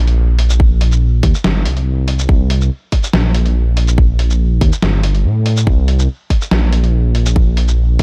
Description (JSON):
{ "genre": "deep dubstep", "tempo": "142 BPM", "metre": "4/4", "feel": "half-time", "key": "unclear", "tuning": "A4 = 442 Hz", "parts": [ { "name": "dark detuned saw bass", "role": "bass", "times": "0.0-8.0 s", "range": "G1 to A2", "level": "-15 LUFS", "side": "equal", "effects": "tube saturation" }, { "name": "trip hop sampler-style drum kit", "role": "drums", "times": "0.1-8.0 s", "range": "hi-hat, shaker, snare drum", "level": "-22 LUFS", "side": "equal", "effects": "none" }, { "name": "electronic kick drum", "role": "drums", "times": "0.6-8.0 s", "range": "none", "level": "-15 LUFS", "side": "equal", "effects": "none" } ], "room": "little or no reverb", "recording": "dark, warm production", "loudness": "-14 LUFS", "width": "mono", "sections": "0.0-8.0 A section", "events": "none", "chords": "none" }